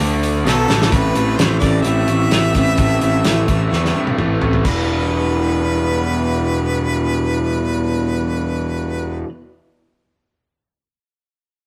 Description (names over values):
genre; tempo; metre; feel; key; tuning
classic rock; 128 BPM; 4/4; straight; E minor; A4 = 440 Hz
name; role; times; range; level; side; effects
overdriven electric guitar; riff; 0.0-9.3 s; E2 to D4; -26 LUFS; equal; spring reverb
overdriven electric guitar; riff; 0.0-9.3 s; A2 to E4; -26 LUFS; equal; phaser
fuzz picked electric bass; bass; 0.0-9.2 s; E1 to G2; -21 LUFS; equal; overdrive
tambourine; percussion; 0.0-0.9 s; none; -40 LUFS; equal; none
damped 70s drum kit; drums; 0.2-4.8 s; crash cymbal, hi-hat, kick drum, snare drum, toms; -22 LUFS; equal; none
clear harmonica; melody; 0.5-9.2 s; A4 to E5; -25 LUFS; equal; none
room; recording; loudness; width
moderate stone room reverb, RT60 1.0 s; rough rehearsal-room recording; -17 LUFS; mono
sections
0.9-4.7 A section; 4.7-8.4 B section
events
drum fill 0.5-0.9, 3.7-4.7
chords
0.0 D5; 0.5 A5; 0.9 Am; 4.7 Em